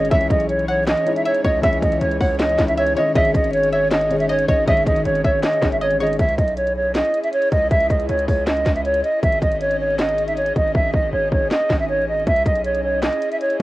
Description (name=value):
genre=hip hop, trap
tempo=158 BPM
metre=4/4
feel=half-time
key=C# minor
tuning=A4 = 440 Hz
part: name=breathy mellow silver concert flute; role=melody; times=0.0-13.6 s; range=C#5 to E5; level=-19 LUFS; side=right 1 dB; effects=cassette tape
part: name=string-like resonator pluck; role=second line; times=0.0-6.2 s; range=C#5 to F#5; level=-27 LUFS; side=left 1 dB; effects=chorus, tape echo, plate reverb
part: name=felt-muted upright piano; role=accompaniment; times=0.0-6.2 s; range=D#3 to C#5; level=-24 LUFS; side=left 3 dB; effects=none
part: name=airy breathy pad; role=sustained chords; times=0.0-13.6 s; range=E3 to D#5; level=-30 LUFS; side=left 1 dB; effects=chorus
part: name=distorted 808-style bass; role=bass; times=0.0-13.6 s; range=G#1 to C#2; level=-27 LUFS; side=equal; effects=distortion
part: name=trap drum kit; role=drums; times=0.1-13.6 s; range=handclaps, hi-hat, kick drum, snare drum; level=-21 LUFS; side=equal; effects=vintage 12-bit sampler grit, cassette tape
room=moderate studio reverb, RT60 0.6 s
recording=home recording on cassette, vinyl crackle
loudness=-16 LUFS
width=side -17 dB against mid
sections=0.0-6.2 A section; 6.2-13.6 B section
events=hi-hats muted 10.7-12.3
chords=0.1 C#madd9; 3.2 G#sus4; 6.2 C#madd9; 9.2 G#sus4; 12.3 C#madd9